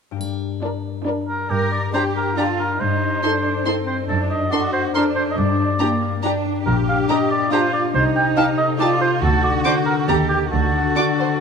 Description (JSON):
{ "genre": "cinematic, playful, whimsical film cue", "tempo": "140 BPM", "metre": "3/4", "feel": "straight", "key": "G minor", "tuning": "A4 = 442 Hz", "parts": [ { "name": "concert harp", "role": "arpeggios", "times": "0.1-11.4 s", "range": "F#2 to D5", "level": "-23 LUFS", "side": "left 11 dB", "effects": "none" }, { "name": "warm studio cello section", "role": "bass", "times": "0.2-11.4 s", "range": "G2 to Bb4", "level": "-24 LUFS", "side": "right 4 dB", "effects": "none" }, { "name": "triangle", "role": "percussion", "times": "0.2-1.0 s", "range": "none", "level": "-40 LUFS", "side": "left 2 dB", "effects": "none" }, { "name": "dark studio violin section", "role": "melody", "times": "0.6-11.0 s", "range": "D5 to D6", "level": "-29 LUFS", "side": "left 1 dB", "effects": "none" }, { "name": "dark studio violin section", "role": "second line", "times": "0.6-11.3 s", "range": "F#4 to C5", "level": "-29 LUFS", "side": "left 2 dB", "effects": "none" }, { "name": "dark studio viola section", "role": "accompaniment", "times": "0.6-11.0 s", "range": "D4 to G4", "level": "-26 LUFS", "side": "right 3 dB", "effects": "none" }, { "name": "mellow oboe", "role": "second line", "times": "1.3-11.4 s", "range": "G4 to G5", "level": "-22 LUFS", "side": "right 2 dB", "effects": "none" }, { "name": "warm studio double bass section", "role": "bass", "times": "1.5-10.9 s", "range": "Bb1 to G2", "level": "-23 LUFS", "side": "right 4 dB", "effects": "none" } ], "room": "moderate scoring stage reverb, RT60 2.0 s", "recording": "none", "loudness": "-17 LUFS", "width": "side -6 dB against mid", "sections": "0.2-1.5 A section; 1.5-11.4 B section", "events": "none", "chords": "0.2 Gm; 2.8 Am7b5/G; 4.1 D7/F#; 5.4 Gm; 6.7 Gm/Bb; 8.0 Am7b5/C; 9.2 D; 10.1 Eb; 10.5 D" }